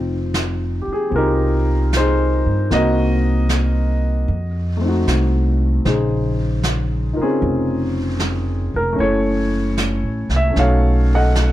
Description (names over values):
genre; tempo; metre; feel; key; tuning
jazz ballad; 76 BPM; 4/4; swing 69% on 8ths; unclear; A4 = 440 Hz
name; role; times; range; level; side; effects
warm grand piano; accompaniment; 0.0-11.5 s; Db3 to G5; -19 LUFS; left 1 dB; none
upright bass; bass; 0.0-11.5 s; F1 to G2; -18 LUFS; equal; none
vintage brush drum kit; drums; 0.3-11.5 s; brushed snare drum, hi-hat, snare drum; -26 LUFS; right 2 dB; none
room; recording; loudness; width
little or no reverb; none; -16 LUFS; side -14 dB against mid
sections
0.0-11.5 A section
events
none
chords
0.0 Fm9; 2.7 Cm7b5; 4.3 F7b9; 5.8 Bbm11; 9.0 Gbm7; 10.6 B9